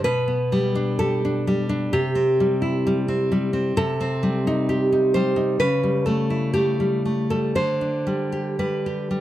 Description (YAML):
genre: romantic piece for solo classical guitar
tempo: 58-67 BPM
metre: 4/4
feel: rubato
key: G major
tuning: A4 = 442 Hz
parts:
  - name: nylon-string guitar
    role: solo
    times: 0.0-9.2 s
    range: B2 to C5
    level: -20 LUFS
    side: equal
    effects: none
room: light reverb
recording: close, detailed microphones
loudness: -20 LUFS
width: side -13 dB against mid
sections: 0.0-9.2 A section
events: none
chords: 0.1 G/B; 1.9 C; 3.8 Am7b5/C; 5.6 A7/C#; 7.6 G/D